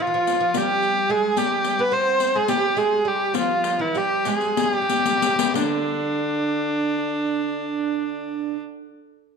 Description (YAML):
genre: Turkish makam ensemble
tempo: 175-218 BPM (eighths)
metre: 7/8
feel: straight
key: G makam hicaz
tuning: A4 = 441 Hz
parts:
  - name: rich kamancheh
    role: melody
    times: 0.0-8.6 s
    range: D4 to C5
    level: -21 LUFS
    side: equal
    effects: none
  - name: oud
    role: second line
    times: 0.0-8.6 s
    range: D3 to C4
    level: -27 LUFS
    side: right 7 dB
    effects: none
  - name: riq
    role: percussion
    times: 0.3-5.9 s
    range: none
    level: -27 LUFS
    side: left 15 dB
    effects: none
room: wet echo chamber reverb, RT60 1.3 s, small room ambience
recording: 1960s-style stereo with parts hard left and right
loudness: -20 LUFS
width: side -5 dB against mid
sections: 0.0-5.6 A section; 5.6-9.4 B section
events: slowing down 1.4-5.6; drum fill 4.9-5.6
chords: none